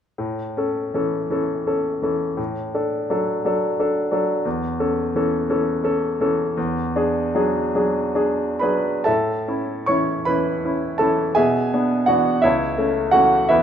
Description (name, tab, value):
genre	classical, romantic character piece for solo piano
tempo	41-61 BPM (dotted quarters)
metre	6/8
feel	rubato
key	A major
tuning	A4 = 440 Hz
part	bright concert grand piano	solo	0.2-13.6 s	C#2 to C#6	-18 LUFS	equal	none
room	moderate recital hall reverb, RT60 1.7 s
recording	minimal, uncompressed stereo recording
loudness	-18 LUFS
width	side -8 dB against mid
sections	0.2-9.1 A section; 9.1-13.6 B section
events	none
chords	0.2 A; 2.4 D/A; 4.5 A/E; 6.6 E9; 9.1 A; 11.4 E7/B; 12.4 A/C#